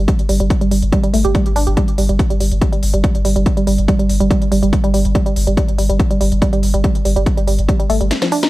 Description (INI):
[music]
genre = driving peak-time techno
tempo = 142 BPM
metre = 4/4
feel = straight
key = unclear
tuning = A4 = 440 Hz
[part]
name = woody wave-folded pluck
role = riff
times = 0.0-8.5 s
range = F3 to G4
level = -18 LUFS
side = right 2 dB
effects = chorus, vintage 12-bit sampler grit, sidechain pumping, tape echo
[part]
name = warm sub bass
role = bass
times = 0.0-8.1 s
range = G1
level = -17 LUFS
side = equal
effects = overdrive, sidechain pumping, low-pass filter
[part]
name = electronic kick drum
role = drums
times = 0.1-7.8 s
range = none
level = -16 LUFS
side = equal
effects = overdrive, studio reverb
[part]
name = techno drum kit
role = drums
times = 0.1-8.5 s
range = hi-hat, snare drum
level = -25 LUFS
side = left 1 dB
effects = overdrive, sidechain pumping on hats, studio reverb
[sound]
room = digital ambience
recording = dry, gritty hardware recording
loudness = -13 LUFS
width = side -17 dB against mid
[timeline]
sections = 0.0-8.5 A section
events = drum fill 8.1-8.5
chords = 0.0 G5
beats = | 0.08 0.50 0.93 1.35 | 1.77 2.19 2.62 3.04 | 3.46 3.88 4.31 4.73 | 5.15 5.57 6.00 6.42 | 6.84 7.26 7.69 8.11